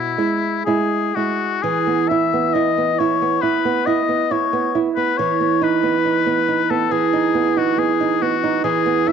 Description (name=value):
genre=romantic duo for oboe and classical guitar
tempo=68 BPM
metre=4/4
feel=rubato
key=E major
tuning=A4 = 440 Hz
part: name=clear oboe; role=melody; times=0.0-9.1 s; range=E4 to E5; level=-20 LUFS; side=left 9 dB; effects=cassette tape
part: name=nylon-string guitar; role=accompaniment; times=0.0-9.1 s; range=B2 to E4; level=-18 LUFS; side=right 7 dB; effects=none
room=moderate spring reverb, RT60 2.9 s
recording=home recording on cassette, nothing above 7.7 kHz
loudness=-16 LUFS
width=side -7 dB against mid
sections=0.0-1.6 A section; 1.6-9.1 B section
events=none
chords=0.0 E; 1.6 E5; 5.2 B/E